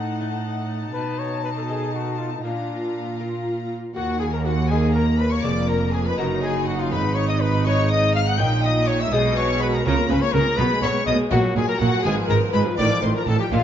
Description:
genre	classical, baroque-style concerto movement with solo episodes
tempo	81 BPM (dotted quarters)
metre	6/8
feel	straight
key	Eb minor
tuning	A4 = 440 Hz
part	rich studio violin section	melody	0.0-13.6 s	F5 to G6	-30 LUFS	left 5 dB	none
part	rich chamber violin section	second line	0.0-13.6 s	F4 to A5	-29 LUFS	left 4 dB	none
part	lute	accompaniment	0.0-13.6 s	Eb2 to Cb5	-30 LUFS	left 1 dB	none
part	rich chamber viola section	accompaniment	0.0-13.6 s	Eb3 to F4	-27 LUFS	equal	none
part	clear symphonic cello section	bass	0.0-13.6 s	Eb2 to Db3	-26 LUFS	right 3 dB	none
part	mellow trumpet	melody	0.9-13.6 s	D4 to G5	-27 LUFS	left 3 dB	none
part	rich chamber double bass section	bass	4.0-13.6 s	F1 to Eb2	-24 LUFS	right 3 dB	none
room	wet recital hall reverb, RT60 1.8 s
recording	dark, warm production, nothing above 7.6 kHz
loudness	-19 LUFS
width	side -10 dB against mid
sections	0.0-4.0 A section; 4.0-13.6 B section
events	none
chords	0.0 Adim7(no3); 0.9 B7; 2.4 Bb; 4.0 Eb5; 5.4 Bb5/F; 6.2 Ebm/Gb; 6.9 Abm; 8.4 Eb5/Bb; 9.1 Abm/Cb; 9.9 Bbm/Db; 10.6 Abm/Cb; 11.3 Gb/Bb; 12.1 Fdim/Ab; 12.8 F7/A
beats	0.21 | 0.95 1.69 | 2.45 3.20 | 3.96 4.70 | 5.44 6.18 | 6.91 7.65 | 8.39 9.12 | 9.85 10.59 | 11.32 12.05 | 12.79 13.53

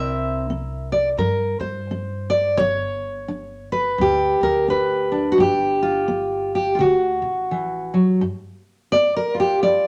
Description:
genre	acoustic country blues, solo or duo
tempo	85 BPM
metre	4/4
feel	swing 60% on 8ths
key	unclear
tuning	A4 = 440 Hz
part	fingerpicked steel-string acoustic guitar	melody	0.0-9.9 s	G2 to E5	-21 LUFS	equal	none
part	upright bass	bass	0.0-8.2 s	G1 to G2	-33 LUFS	equal	none
room	moderate studio reverb, RT60 0.8 s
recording	none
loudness	-21 LUFS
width	mono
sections	0.0-8.2 A section; 8.2-9.9 B section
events	steel-string acoustic guitar solo 8.2-9.9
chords	0.0 C7; 2.6 G7; 6.8 D; 8.2 G7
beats	0.49 1.19 1.89 | 2.59 3.29 3.99 4.69 | 5.40 6.10 6.81 7.51 | 8.22 8.92 9.63

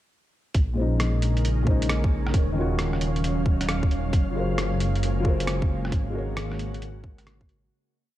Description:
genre	future garage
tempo	134 BPM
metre	4/4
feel	swing 66% on 16ths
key	unclear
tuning	A4 = 440 Hz
part	ethereal airy pad	sustained chords	0.9-7.7 s	Db3 to F5	-31 LUFS	equal	ensemble chorus, built-in reverb, sidechain pumping
part	dark detuned saw bass	bass	0.5-7.7 s	Eb1 to Bb1	-26 LUFS	equal	sidechain pumping
part	electronic kick drum	drums	0.5-7.5 s	none	-22 LUFS	equal	studio reverb
part	lo-fi sampler-style drum kit	drums	0.5-7.6 s	hi-hat, rim click	-32 LUFS	right 1 dB	overdrive, studio reverb
part	wind-like tuned noise texture	texture	1.4-7.7 s	Db4 to Db5	-38 LUFS	right 4 dB	built-in reverb
part	felt-muted upright piano	accompaniment	0.7-7.7 s	Bb2 to Db5	-30 LUFS	left 2 dB	sidechain pumping, tape echo
room	light reverb, digital ambience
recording	cassette tape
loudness	-22 LUFS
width	side -14 dB against mid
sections	0.6-7.7 groove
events	fade-out 5.3-7.7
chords	0.6 Bbm11; 2.3 Ebm9; 4.1 Gbmaj9#11; 5.9 Ab9sus4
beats	| 0.55 1.00 1.45 1.89 | 2.34 2.79 3.24 3.69 | 4.13 4.58 5.03 5.48 | 5.92 6.37 6.82 7.27

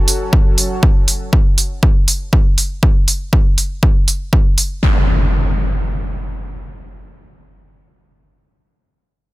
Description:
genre	melodic techno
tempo	120 BPM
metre	4/4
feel	straight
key	F# minor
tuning	A4 = 442 Hz
part	lush unison pad	sustained chords	0.0-0.8 s	F#3 to A4	-25 LUFS	equal	chorus, sidechain pumping
part	electronic hi-hat	drums	0.1-4.7 s	none	-16 LUFS	right 2 dB	none
part	electronic kick drum	drums	0.3-4.4 s	none	-13 LUFS	equal	none
part	impact	sound effects	4.8-8.4 s	none	-16 LUFS	equal	none
room	little or no reverb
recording	dense, heavily limited modern master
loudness	-12 LUFS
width	side -19 dB against mid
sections	0.0-4.8 A section; 4.8-8.8 B section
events	none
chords	0.0 F#m; 4.8 N.C.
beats	0.33 | 0.83 1.33 1.83 2.33 | 2.83 3.33 3.83 4.33 | 4.83 5.33 5.83 6.33 | 6.83 7.33 7.83 8.33

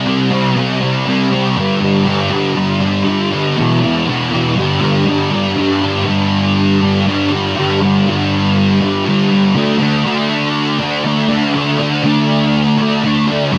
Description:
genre	rock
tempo	120 BPM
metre	4/4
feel	straight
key	G major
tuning	A4 = 440 Hz
part	thick fuzz guitar	solo	0.0-13.6 s	E2 to D4	-14 LUFS	equal	distortion, ensemble chorus
room	moderate scoring stage reverb, RT60 1.8 s, digital ambience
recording	none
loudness	-14 LUFS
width	mono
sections	0.0-5.6 A section; 5.6-13.6 B section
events	none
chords	0.0 C5; 1.6 G5; 3.6 E5; 4.6 G5; 9.5 D5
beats	0.07 0.57 1.07 | 1.57 2.07 2.57 3.07 | 3.56 4.07 4.56 5.06 | 5.56 6.06 6.56 7.06 | 7.55 8.05 8.55 9.05 | 9.55 10.04 10.54 11.04 | 11.54 12.03 12.53 13.03 | 13.53

